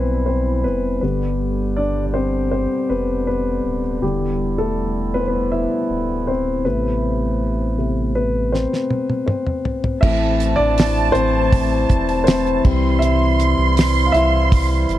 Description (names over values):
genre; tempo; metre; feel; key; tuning
pop ballad; 80 BPM; 4/4; straight; unclear; A4 = 440 Hz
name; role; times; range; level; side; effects
dark grand piano; accompaniment; 0.0-15.0 s; C3 to F5; -20 LUFS; left 2 dB; none
warm woodwind section; sustained chords; 0.0-15.0 s; C3 to G4; -27 LUFS; right 4 dB; none
saturated sub bass; bass; 0.0-15.0 s; D1 to C2; -22 LUFS; right 1 dB; none
damped 70s drum kit; drums; 8.5-15.0 s; crash cymbal, hi-hat, kick drum, snare drum, toms; -19 LUFS; right 1 dB; none
warm studio violin section; second line; 10.0-15.0 s; A5 to C6; -23 LUFS; right 3 dB; none
room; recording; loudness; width
light reverb; dark, warm production; -16 LUFS; side -13 dB against mid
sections
0.0-10.0 A section; 10.0-15.0 B section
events
grand piano solo 0.0-10.0, 10.0-15.0; drum fill 8.5-10.0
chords
0.0 Cmaj7; 1.0 G; 4.0 Em7; 6.7 Amadd9; 10.0 Am; 12.7 C